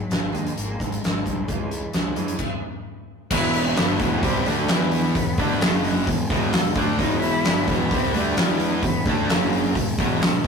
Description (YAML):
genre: quiet-loud alternative rock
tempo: 131 BPM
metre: 4/4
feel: straight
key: unclear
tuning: A4 = 440 Hz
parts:
  - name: warm cello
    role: melody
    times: 0.0-9.8 s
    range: E3 to E4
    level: -29 LUFS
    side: left 3 dB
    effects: slapback echo
  - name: picked steel-string acoustic guitar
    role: arpeggios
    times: 0.0-2.4 s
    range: G#2 to G#3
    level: -36 LUFS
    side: right 6 dB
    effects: none
  - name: fuzz picked electric bass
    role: bass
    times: 0.1-10.5 s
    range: E1 to F#2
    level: -29 LUFS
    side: equal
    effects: overdrive
  - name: huge arena drum kit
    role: drums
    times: 0.1-10.5 s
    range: crash cymbal, hi-hat, kick drum, snare drum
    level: -23 LUFS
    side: equal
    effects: none
  - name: cranked stack guitar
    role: riff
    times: 3.3-10.4 s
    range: E2 to E4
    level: -28 LUFS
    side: left 6 dB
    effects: overdrive
  - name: fuzz guitar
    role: riff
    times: 3.3-10.4 s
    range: E2 to E4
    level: -24 LUFS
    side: right 4 dB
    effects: distortion
room: light reverb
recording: rough rehearsal-room recording, tube saturation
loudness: -19 LUFS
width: side -5 dB against mid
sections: 0.0-3.3 A section; 3.3-10.5 B section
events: stop 2.4-3.3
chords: 0.0 G#5; 1.5 C#m; 3.3 Em; 5.6 F#5; 6.1 Em; 9.3 F#5; 9.8 E5